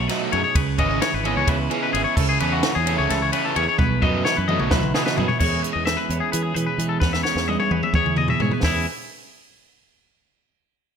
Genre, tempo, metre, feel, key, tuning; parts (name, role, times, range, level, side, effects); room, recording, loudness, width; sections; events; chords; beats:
math rock and midwest emo; 260 BPM (eighths); 7/8; straight; E major; A4 = 440 Hz
twelve-string electric guitar; accompaniment; 0.0-8.9 s; E2 to G#4; -27 LUFS; right 9 dB
twangy electric guitar; arpeggios; 0.0-8.9 s; E4 to E5; -24 LUFS; left 7 dB
growling fingered electric bass; bass; 0.0-8.8 s; G#1 to E3; -26 LUFS; equal; overdrive
overdriven semi-hollow guitar; riff; 0.1-5.3 s; B2 to D#4; -26 LUFS; right 3 dB; slapback echo
compact cocktail drum kit; drums; 0.1-8.7 s; crash cymbal, hi-hat, kick drum, ride cymbal, snare drum, toms; -24 LUFS; equal
moderate recital hall reverb, RT60 1.3 s; big arena sound; -18 LUFS; side -7 dB against mid
0.0-5.4 A section; 5.4-8.6 B section; 8.6-10.3 C section
drum fill 3.8-5.4, 7.0-8.6
0.0 B13; 0.6 C#m7; 2.2 Amaj7/C#; 3.8 B7sus4; 5.4 E6
0.10 0.33 | 0.56 0.79 1.02 1.25 1.49 1.72 1.95 | 2.18 2.41 2.64 2.87 3.10 3.33 3.56 | 3.79 4.02 4.25 4.49 4.72 4.95 5.18 | 5.41 5.64 5.87 6.10 6.33 6.56 6.79 | 7.02 7.25 7.49 7.72 7.95 8.18 8.41 | 8.64